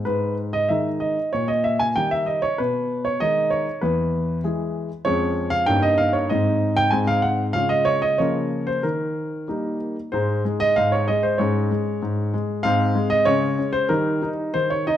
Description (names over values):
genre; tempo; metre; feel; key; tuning
classical-period piano sonatina; 96 BPM; 2/4; straight; G# minor, Ab major from 5.0 s; A4 = 441 Hz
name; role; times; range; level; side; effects
warm grand piano; solo; 0.0-15.0 s; E2 to G#5; -19 LUFS; equal; none
room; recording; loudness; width
wet large studio reverb, RT60 1.5 s; dark, warm production; -19 LUFS; side -11 dB against mid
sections
0.1-10.1 A section; 10.1-15.0 B section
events
none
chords
0.1 G#5; 1.3 D#/A#; 2.6 G#m/B; 3.8 E; 5.0 Db/F; 5.7 Eb7/G; 6.3 Ab; 7.6 Db; 8.2 Bbm/Db; 8.8 Eb; 10.1 Ab5; 11.4 Db5/Ab; 12.6 Ab; 13.3 Db5; 13.9 Eb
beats
| 0.06 0.70 | 1.33 1.96 | 2.58 3.20 | 3.81 4.43 | 5.05 5.67 | 6.30 6.93 | 7.56 8.20 | 8.83 9.48 | 10.13 10.77 | 11.40 12.02 | 12.65 13.27 | 13.90 14.54